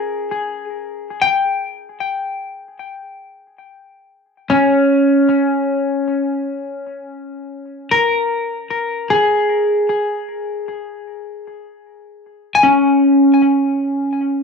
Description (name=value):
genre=ambient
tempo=free time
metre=none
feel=none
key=unclear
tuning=A4 = 440 Hz
part: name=semi-hollow electric guitar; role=solo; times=0.0-14.4 s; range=Db4 to Ab5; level=-15 LUFS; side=left 1 dB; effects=wide subtle chorus, cassette tape, analog delay
room=wet studio reverb, RT60 0.6 s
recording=home recording on cassette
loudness=-14 LUFS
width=side -4 dB against mid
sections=0.0-5.2 A section; 5.2-14.4 B section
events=none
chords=0.5 N.C.; 5.2 Db5